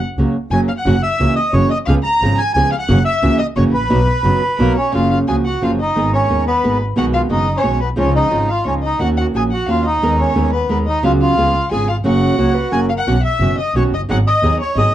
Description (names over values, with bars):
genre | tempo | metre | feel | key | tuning
tango | 177 BPM | 3/4 | rubato | B major, F# major from 4.9 s | A4 = 439 Hz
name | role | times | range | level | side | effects
flamenco guitar | accompaniment | 0.2-14.9 s | B2 to A#4 | -18 LUFS | right 2 dB | none
clear double bass | bass | 0.2-14.9 s | F#1 to D#2 | -18 LUFS | equal | none
bandoneon | melody | 0.5-14.9 s | A#3 to A#5 | -19 LUFS | right 1 dB | none
rich violin | second line | 0.5-14.9 s | A#4 to A#5 | -23 LUFS | left 4 dB | none
breathy mellow silver concert flute | second line | 12.4-13.1 s | A#4 to C#5 | -26 LUFS | left 5 dB | none
room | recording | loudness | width
moderate club reverb, RT60 0.6 s | dark, warm production | -13 LUFS | side -12 dB against mid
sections
0.0-4.9 A section; 4.9-13.1 B section; 13.1-14.9 A section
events
none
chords
0.0 F#; 0.9 F#7; 1.9 C#7; 2.9 F#7; 3.9 B; 4.9 F#maj7; 6.0 G#madd9; 7.0 B6; 8.0 C#add9; 9.0 D#m7; 10.0 G#madd9/D#; 11.0 C#7sus4; 11.4 C#7; 12.0 F#; 13.1 Badd9; 14.1 G#m7